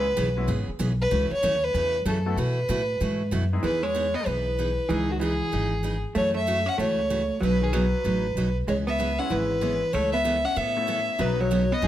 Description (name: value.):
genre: country.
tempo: 190 BPM.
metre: 4/4.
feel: swing 63% on 8ths.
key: E major.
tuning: A4 = 440 Hz.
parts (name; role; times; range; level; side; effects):
dark fiddle; melody; 0.0-11.9 s; F#4 to F#5; -26 LUFS; left 1 dB; plate reverb.
bright upright piano; accompaniment; 0.0-3.6, 9.2-11.9 s; F#3 to A4; -35 LUFS; left 5 dB; none.
picked steel-string acoustic guitar; accompaniment; 0.0-11.9 s; B2 to B4; -31 LUFS; right 2 dB; none.
upright bass; bass; 0.0-11.9 s; F#1 to B2; -28 LUFS; equal; none.
vintage hollow-body jazz guitar; second line; 3.6-11.9 s; D#3 to C#4; -30 LUFS; right 2 dB; none.
room: moderate studio reverb, RT60 0.9 s.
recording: none.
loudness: -22 LUFS.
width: side -12 dB against mid.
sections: 0.0-3.6 A section; 3.6-11.9 B section.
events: none.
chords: 0.0 C#m7; 1.1 F#m7/C#; 2.4 B7sus4; 3.6 Emaj7; 4.9 C#madd9; 6.2 F#m7; 7.4 Badd9; 8.7 C#m7; 9.9 Aadd9/C#; 11.2 Badd9.